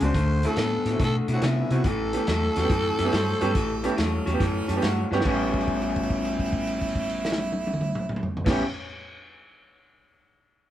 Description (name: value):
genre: electric blues shuffle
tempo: 141 BPM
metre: 4/4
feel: swing 68% on 8ths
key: A mixolydian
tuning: A4 = 440 Hz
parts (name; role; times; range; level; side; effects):
- growling tenor saxophone; melody; 0.0-4.8 s; E4 to C5; -29 LUFS; equal; none
- warm grand piano; accompaniment; 0.0-8.6 s; G#3 to A5; -30 LUFS; right 4 dB; none
- electric guitar through a small old amp; riff; 0.0-8.6 s; E2 to C#4; -28 LUFS; left 3 dB; spring reverb
- hollow-body short-scale fingered electric bass; bass; 0.0-8.6 s; A1 to C3; -28 LUFS; equal; none
- vintage drum kit; drums; 0.0-8.6 s; crash cymbal, hi-hat, kick drum, snare drum, toms; -29 LUFS; equal; none
- bright harmonica; second line; 2.6-8.6 s; C#4 to G5; -33 LUFS; right 4 dB; overdrive
room: moderate studio reverb, RT60 0.7 s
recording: band playing live in one room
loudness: -22 LUFS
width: side -12 dB against mid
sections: 0.0-5.3 A section; 5.3-8.7 B section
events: grand piano fill 4.4-5.3; drum fill 5.0; held note 5.3-8.4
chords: 0.1 D7; 1.9 A7; 5.3 A9